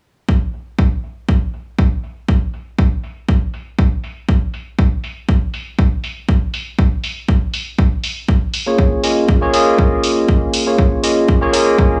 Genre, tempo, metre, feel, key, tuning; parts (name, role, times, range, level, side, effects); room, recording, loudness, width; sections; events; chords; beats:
deep house; 120 BPM; 4/4; swing 53% on 16ths; A4 = 437 Hz
electronic kick drum; drums; 0.3-11.9 s; -16 LUFS; equal; overdrive
electronic hi-hat; drums; 0.5-11.6 s; -26 LUFS; equal; low-pass filter on hats
barky tine electric piano; stabs; 8.7-12.0 s; Bb3 to Eb5; -16 LUFS; equal; analog chorus, sidechain pumping, tape echo
little or no reverb; small room ambience; -17 LUFS; mono
0.3-12.0 A section
filter sweep on drum 0.3-12.0
0.3 N.C.; 8.3 Db6/Bb
| 0.29 0.79 1.29 1.79 | 2.29 2.79 3.29 3.79 | 4.29 4.79 5.29 5.79 | 6.29 6.79 7.29 7.79 | 8.29 8.79 9.29 9.79 | 10.29 10.79 11.29 11.79